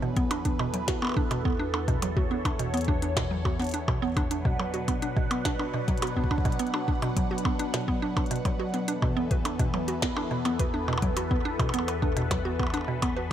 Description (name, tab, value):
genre	IDM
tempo	105 BPM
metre	4/4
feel	straight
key	unclear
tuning	A4 = 440 Hz
part	phased analog pad	sustained chords	0.0-13.3 s	E2 to F#5	-31 LUFS	left 1 dB	phaser, chorus
part	mallet-like synth pluck	arpeggios	0.0-13.2 s	B2 to B4	-30 LUFS	right 2 dB	chorus, dub echo
part	electronic kick drum	drums	0.2-13.1 s	none	-29 LUFS	equal	none
part	glitchy drum kit	drums	0.2-13.1 s	hi-hat, percussion blips, snare drum	-34 LUFS	equal	tape echo
room	light reverb, digital ambience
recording	echo-heavy mix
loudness	-25 LUFS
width	side -10 dB against mid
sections	0.0-13.3 A section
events	none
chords	0.0 Esus4; 4.3 Bm; 8.9 Esus4